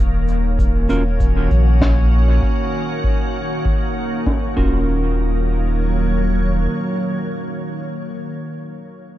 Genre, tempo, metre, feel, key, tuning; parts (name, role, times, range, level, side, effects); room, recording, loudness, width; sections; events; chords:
ambient dub; 98 BPM; 4/4; straight; Eb minor; A4 = 440 Hz
soft additive organ-like pad; sustained chords; 0.0-8.1 s; Eb3 to Db5; -23 LUFS; equal; ensemble chorus, built-in reverb
warm sub bass; bass; 0.0-6.7 s; Eb1 to Bb1; -16 LUFS; equal; tube saturation
drifting glass-harmonics texture; texture; 0.5-4.9 s; Db4 to Db5; -31 LUFS; equal; chorus, built-in reverb
shaker and snare drum; drums; 0.3-4.4 s; -24 LUFS; equal; low-pass filter on snare, low-pass filter on perc, low-pass filter on room, dub echo
electronic kick drum; drums; 0.6-4.7 s; -20 LUFS; equal; overdrive
mellow electric guitar; stabs; 0.9-7.9 s; Db4 to Bb4; -27 LUFS; right 1 dB; dub echo
small room reverb; dark, warm production; -16 LUFS; side -14 dB against mid
0.0-4.9 A section; 4.9-7.3 B section
filter sweep on drum 0.0-4.9
0.0 Ebm7